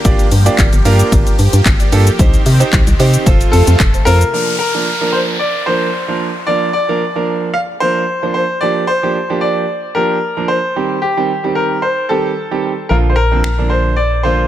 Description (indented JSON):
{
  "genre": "dance-pop",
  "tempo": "112 BPM",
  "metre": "4/4",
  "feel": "straight",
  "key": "Bb major",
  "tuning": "A4 = 440 Hz",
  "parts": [
    { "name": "clear concert grand piano", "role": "accompaniment", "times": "0.0-14.5 s", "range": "D3 to D5", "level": "-18 LUFS", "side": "right 5 dB", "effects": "sidechain pumping" },
    { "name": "supersaw pad", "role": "sustained chords", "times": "0.0-4.3 s", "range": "C3 to G4", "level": "-22 LUFS", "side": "equal", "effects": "phaser, sidechain pumping" },
    { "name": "house drum kit", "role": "drums", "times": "0.0-4.3, 13.4-13.6 s", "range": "finger snaps, handclaps, hi-hat, kick drum, shaker", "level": "-13 LUFS", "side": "equal", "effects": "none" },
    { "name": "organ-like FM bass", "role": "bass", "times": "0.1-4.2, 12.9-14.5 s", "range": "F1 to C3", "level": "-12 LUFS", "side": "equal", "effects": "sidechain pumping" },
    { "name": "bright concert grand piano", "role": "melody", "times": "3.5-14.5 s", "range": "G4 to F5", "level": "-16 LUFS", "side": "left 2 dB", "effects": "dub echo" },
    { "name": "downlifter", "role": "sound effects", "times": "4.3-8.6 s", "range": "none", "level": "-23 LUFS", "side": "left 1 dB", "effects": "none" }
  ],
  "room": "light reverb, digital ambience",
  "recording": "none",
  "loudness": "-11 LUFS",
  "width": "side -12 dB against mid",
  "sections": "0.0-4.3 A section; 4.3-14.5 B section",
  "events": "drop 0.0-4.3",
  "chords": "0.0 Gm7; 2.2 Cm; 3.3 F; 4.3 Bb; 8.6 Gm7; 10.8 Cm; 12.9 Bb"
}